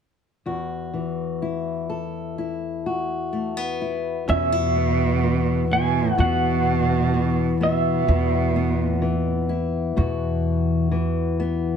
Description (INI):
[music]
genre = acoustic folk duo or small band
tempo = 63 BPM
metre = 4/4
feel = straight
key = unclear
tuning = A4 = 440 Hz
[part]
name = fingerpicked steel-string acoustic guitar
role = accompaniment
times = 0.5-11.8 s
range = E2 to A4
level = -26 LUFS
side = left 5 dB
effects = none
[part]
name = electric guitar through a small old amp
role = melody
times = 4.3-9.5 s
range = E5 to G#5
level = -24 LUFS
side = right 1 dB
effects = tremolo
[part]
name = warm cello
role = second line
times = 4.3-9.5 s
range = B2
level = -24 LUFS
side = right 7 dB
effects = none
[part]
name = upright bass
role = bass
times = 4.3-11.8 s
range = E2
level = -23 LUFS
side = equal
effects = none
[sound]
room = moderate studio reverb, RT60 0.7 s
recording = none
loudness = -20 LUFS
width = side -7 dB against mid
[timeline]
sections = 0.5-4.3 A section; 4.3-11.8 B section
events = none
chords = 0.5 Esus2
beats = | 0.47 1.42 2.38 3.33 | 4.29 5.24 6.19 7.14 | 8.09 9.03 9.98 10.93